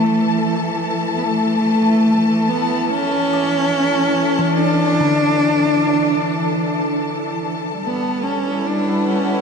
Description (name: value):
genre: ambient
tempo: 73 BPM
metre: 4/4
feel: straight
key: unclear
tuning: A4 = 443 Hz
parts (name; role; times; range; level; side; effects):
- clear cello; melody; 0.0-9.4 s; A3 to D4; -17 LUFS; equal; ping-pong delay
- rich studio string section; sustained chords; 0.0-9.4 s; E3 to A5; -21 LUFS; left 1 dB; none
- kalimba; arpeggios; 0.0-8.5 s; D3 to E6; -26 LUFS; left 2 dB; ping-pong delay
room: wet huge ambient reverb, RT60 8.0 s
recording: dark, warm production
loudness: -15 LUFS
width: side -6 dB against mid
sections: 0.0-9.4 A section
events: fade-out on kalimba 0.0-9.4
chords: 0.0 Bm11 (rootless); 7.8 Em